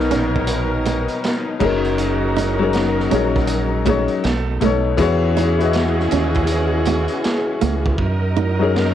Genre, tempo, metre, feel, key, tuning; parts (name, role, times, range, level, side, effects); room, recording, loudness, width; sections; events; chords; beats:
R&B, neo-soul; 80 BPM; 4/4; swing 64% on 16ths; F# mixolydian; A4 = 444 Hz
warm upright piano; accompaniment; 0.0-8.9 s; B2 to D#5; -20 LUFS; left 6 dB; plate reverb
warm studio string section; sustained chords; 0.0-8.9 s; F#3 to D#5; -26 LUFS; right 2 dB
clear horn section; stabs; 0.0-8.9 s; C#3 to A#4; -29 LUFS; right 10 dB
deep dub fingered electric bass; bass; 0.0-8.9 s; F#1 to F#2; -21 LUFS; right 2 dB
crunchy breakbeat drum kit; drums; 0.0-8.9 s; crash cymbal, hi-hat, kick drum, snare drum; -25 LUFS; right 2 dB; cassette tape
flamenco guitar; second line; 0.1-8.5 s; A3 to D#4; -22 LUFS; right 9 dB
light reverb; home recording on cassette; -16 LUFS; side -10 dB against mid
0.0-8.9 A section
hi-hats muted 8.0-8.9
0.0 Bmaj7; 1.6 F#6; 4.2 B9; 5.0 E69; 8.0 F#6
0.48 1.23 | 1.98 2.73 3.48 4.23 | 4.98 5.73 6.48 7.23 | 7.98 8.73